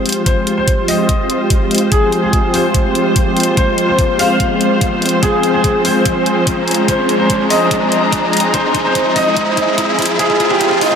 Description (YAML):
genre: heavy wobble dubstep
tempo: 145 BPM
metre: 4/4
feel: half-time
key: F minor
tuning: A4 = 441 Hz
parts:
  - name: warm grand piano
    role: melody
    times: 0.0-11.0 s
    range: Eb4 to F5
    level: -17 LUFS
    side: equal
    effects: lush chorus, analog delay
  - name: supersaw pad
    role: sustained chords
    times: 0.0-11.0 s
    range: F3 to Ab4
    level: -17 LUFS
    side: equal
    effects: lush chorus, sidechain pumping, low-pass filter
  - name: riser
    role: sound effects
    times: 0.0-11.0 s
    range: none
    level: -22 LUFS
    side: equal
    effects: none
  - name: muted studio string section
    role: texture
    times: 0.0-11.0 s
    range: F4 to Bb5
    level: -20 LUFS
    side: left 1 dB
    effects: sidechain pumping
  - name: electronic hi-hat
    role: drums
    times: 0.1-10.9 s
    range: none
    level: -20 LUFS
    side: left 1 dB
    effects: none
  - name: electronic kick drum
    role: drums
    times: 0.3-11.0 s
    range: none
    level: -18 LUFS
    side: equal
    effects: none
room: wet cathedral reverb, RT60 5.3 s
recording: dreamy mix soaked in reverb, high-pass filter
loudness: -11 LUFS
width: side -7 dB against mid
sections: 0.0-11.0 A section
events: build-up 0.0-11.0; riser 0.0-11.0; filter sweep on supersaw synth 0.0-11.0; drum fill 5.2-11.0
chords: 0.0 Fmadd9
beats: | 0.26 0.68 1.09 1.50 | 1.92 2.33 2.75 3.16 | 3.57 3.99 4.40 4.81 | 5.23 5.64 6.06 6.47 | 6.88 7.30 7.71 8.12 | 8.54 8.95 9.37 9.78 | 10.19 10.61